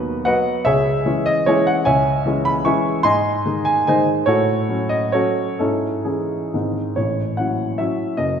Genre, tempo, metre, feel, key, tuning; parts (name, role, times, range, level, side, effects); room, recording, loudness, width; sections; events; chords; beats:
classical, romantic triple-time dance for piano with dotted rhythms; 124-159 BPM; 3/4; rubato; A4 = 439 Hz
warm baby grand piano; solo; 0.0-8.4 s; F#1 to C#6; -17 LUFS; equal
wet concert hall reverb, RT60 1.9 s; recorded in a church or concert hall; -17 LUFS; side -7 dB against mid
0.0-7.0 A section; 7.0-8.4 B section
0.0 B/D#; 0.7 C#m; 3.0 G#; 4.3 F#m/A; 5.6 C#m/G#; 6.5 G#; 7.0 A6
0.26 | 0.65 1.05 1.47 | 1.85 2.25 2.66 | 3.04 3.44 3.86 | 4.26 4.68 5.13 | 5.59 6.05 6.53 | 6.97 7.38 7.78 | 8.17